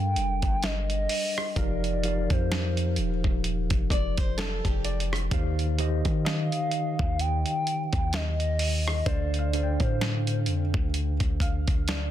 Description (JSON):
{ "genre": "contemporary R&B", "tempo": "64 BPM", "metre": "4/4", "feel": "swing 58% on 16ths", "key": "unclear", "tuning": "A4 = 440 Hz", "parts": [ { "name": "gliding portamento lead", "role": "melody", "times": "0.0-10.7 s", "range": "C5 to G5", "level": "-32 LUFS", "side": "equal", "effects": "chorus, tape echo" }, { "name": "mellow tine electric piano", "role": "accompaniment", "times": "0.0-12.1 s", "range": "D3 to F5", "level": "-32 LUFS", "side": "equal", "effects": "medium stereo tremolo" }, { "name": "warm 808-style bass", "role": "bass", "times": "0.0-12.1 s", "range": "Eb1 to Eb3", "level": "-28 LUFS", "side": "equal", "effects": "none" }, { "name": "dusty soul sampler-style drum kit", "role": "drums", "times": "0.2-12.1 s", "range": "hi-hat, kick drum, rim click, snare drum", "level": "-28 LUFS", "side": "equal", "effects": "none" }, { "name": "felt-muted upright piano", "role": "texture", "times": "1.6-12.1 s", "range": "Bb4 to G5", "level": "-42 LUFS", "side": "left 2 dB", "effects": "tape echo" }, { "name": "nylon-string guitar", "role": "arpeggios", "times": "3.9-5.3 s", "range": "G4 to D5", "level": "-34 LUFS", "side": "left 3 dB", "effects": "tape echo" } ], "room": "little or no reverb", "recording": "dense, heavily limited modern master", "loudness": "-24 LUFS", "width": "side -12 dB against mid", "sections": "0.0-12.1 A section", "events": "tine electric piano fill 11.4-12.1", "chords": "0.0 Gm9; 1.6 F9sus4; 5.3 Eb69; 9.1 Dm7" }